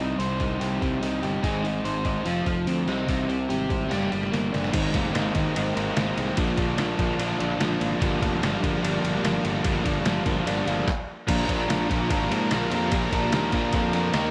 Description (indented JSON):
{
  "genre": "indie rock",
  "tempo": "146 BPM",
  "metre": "4/4",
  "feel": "straight",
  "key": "unclear",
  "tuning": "A4 = 440 Hz",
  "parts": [
    { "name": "biting overdriven guitar", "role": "riff", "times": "0.0-14.3 s", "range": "G2 to C5", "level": "-29 LUFS", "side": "equal", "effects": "none" },
    { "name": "crunchy overdriven guitar", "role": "riff", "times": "0.0-14.3 s", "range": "Eb3 to Ab4", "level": "-31 LUFS", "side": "equal", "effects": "lush chorus, tape echo" },
    { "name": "fuzz fingered electric bass", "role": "bass", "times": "0.0-14.3 s", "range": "F1 to Ab2", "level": "-33 LUFS", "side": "equal", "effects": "overdrive" },
    { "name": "trip hop sampler-style drum kit", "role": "drums", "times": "0.2-14.2 s", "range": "crash cymbal, handclaps, hi-hat, kick drum, ride cymbal, snare drum", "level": "-32 LUFS", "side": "equal", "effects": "none" },
    { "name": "string machine, violins", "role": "sustained chords", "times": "8.0-14.3 s", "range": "Eb4 to Eb6", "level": "-39 LUFS", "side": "equal", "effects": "none" }
  ],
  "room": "light reverb, digital ambience",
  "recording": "none",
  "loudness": "-25 LUFS",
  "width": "mono",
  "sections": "0.0-4.7 A section; 4.7-11.3 B section; 11.3-14.3 C section",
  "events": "drum fill 3.9-4.7; stop 10.9-11.3",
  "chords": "0.0 Cm; 1.4 Ab; 2.3 F5; 2.9 Cm; 3.9 Gm; 4.7 Abadd9; 6.4 Bb; 8.0 Gm7; 11.3 Bb6"
}